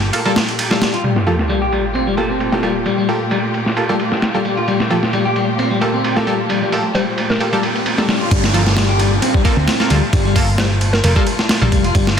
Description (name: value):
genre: breakbeat, breaks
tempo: 132 BPM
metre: 4/4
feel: swing 54% on 16ths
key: G minor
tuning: A4 = 439 Hz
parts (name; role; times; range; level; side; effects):
- muted studio string section; sustained chords; 0.0-12.2 s; Bb2 to A4; -23 LUFS; equal; sidechain pumping
- hollow-body short-scale picked electric bass; bass; 0.0-0.1, 8.3-12.2 s; F1 to D2; -16 LUFS; equal; none
- band-passed chord stab; stabs; 0.1-12.2 s; Bb3 to A4; -23 LUFS; right 1 dB; chorus, dub echo
- dusty soul sampler-style drum kit; drums; 0.1-12.2 s; hi-hat, kick drum, ride cymbal, snare drum; -19 LUFS; right 1 dB; overdrive, low-pass filter on cymbals, studio reverb, low-pass filter on kick, low-pass filter on snare, low-pass filter on hats
- electric guitar at the edge of break-up; riff; 0.3-12.2 s; F3 to G4; -20 LUFS; left 3 dB; tube saturation, low-pass filter, dub echo
- sub drop, riser and downlifter; sound effects; 1.0-11.9 s; none; -24 LUFS; equal; none
- hollow square pluck; melody; 6.9-7.5, 10.6-11.1 s; Bb4 to C5; -25 LUFS; equal; chorus, small speaker sound, vintage 12-bit sampler grit, dub echo
room: moderate lush hall reverb, RT60 2.3 s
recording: dense, heavily limited modern master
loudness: -14 LUFS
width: side -8 dB against mid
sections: 0.0-1.0 A section; 1.0-8.3 B section; 8.3-12.2 C section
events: impact 1.0-2.9; filter sweep on synth stab 1.0-8.3; riser 5.9-8.3; drop 8.3-12.2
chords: 0.0 Gm9